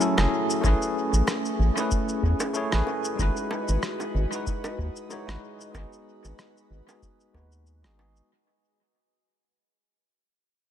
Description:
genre	sunset chillout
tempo	94 BPM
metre	4/4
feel	swing 56% on 16ths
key	unclear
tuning	A4 = 440 Hz
part	bell-like tine electric piano	accompaniment	0.0-8.3 s	F#3 to C#5	-29 LUFS	equal	auto-pan, low-pass filter, analog delay
part	airy breathy pad	sustained chords	0.0-8.3 s	F#3 to D#5	-32 LUFS	left 1 dB	chorus
part	electronic cabasa and rim click	drums	0.0-8.3 s	none	-32 LUFS	equal	overdrive, analog delay
part	round analog bass	bass	0.2-8.2 s	F#1 to E2	-24 LUFS	equal	none
part	bongos	percussion	0.2-8.1 s	none	-37 LUFS	right 1 dB	none
part	electronic kick drum	drums	0.6-7.5 s	none	-29 LUFS	equal	overdrive
room	light reverb, digital ambience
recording	echo-heavy mix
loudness	-23 LUFS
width	side -10 dB against mid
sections	0.0-8.3 A section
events	fade-out 0.0-8.3; filter sweep on tine electric piano 0.0-8.3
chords	0.0 F#m7; 0.6 Amaj7; 3.2 Emaj9/G#; 5.7 G#m7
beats	0.00 | 0.64 1.28 1.92 2.56 | 3.19 3.83 4.47 5.11 | 5.75 6.39 7.02 7.66

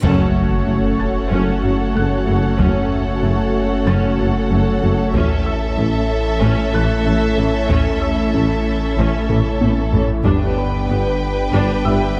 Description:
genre	cinematic, hybrid orchestral and electronic film score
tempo	94 BPM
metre	4/4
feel	straight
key	F# phrygian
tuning	A4 = 441 Hz
part	rich chamber violin section	melody	0.0-12.2 s	E5 to G5	-31 LUFS	equal	none
part	rich symphonic violin section	second line	0.0-12.2 s	A4 to B4	-28 LUFS	equal	none
part	rich symphonic viola section	accompaniment	0.0-12.2 s	E3 to D4	-31 LUFS	equal	none
part	mellow French horn section	sustained chords	0.0-12.2 s	A3 to D4	-27 LUFS	equal	none
part	warm analog pad	sustained chords	0.0-12.2 s	A3 to C#5	-25 LUFS	equal	chorus
part	tight sequenced synth	arpeggios	0.0-12.2 s	F#3 to A4	-30 LUFS	equal	none
part	mellow tuba	bass	0.0-12.2 s	F#1 to A1	-28 LUFS	equal	none
part	phased detuned saw bass	bass	0.0-12.2 s	F#1 to A1	-25 LUFS	equal	phaser
part	rich symphonic cello section	bass	0.0-12.2 s	F#2 to A2	-27 LUFS	equal	none
part	rich symphonic double bass section	bass	0.0-12.2 s	F#1 to A1	-27 LUFS	equal	none
part	taiko ensemble	drums	0.0-10.9 s	none	-24 LUFS	equal	none
part	reverse cymbal and sub drop	sound effects	0.0-2.6 s	none	-26 LUFS	equal	none
part	felt-muted upright piano	texture	0.0-12.2 s	B4 to A6	-35 LUFS	equal	delay
room	moderate scoring stage reverb, RT60 1.6 s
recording	dark, warm production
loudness	-17 LUFS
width	mono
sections	0.0-12.2 A section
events	band accent 0.0-0.7; impact 0.0-2.6; drum fill 9.3-10.3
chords	0.0 F#m; 5.1 A; 10.3 G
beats	| 0.04 0.68 1.32 1.96 | 2.60 3.23 3.87 4.51 | 5.15 5.79 6.42 7.06 | 7.70 8.34 8.98 9.62 | 10.25 10.89 11.53 12.17

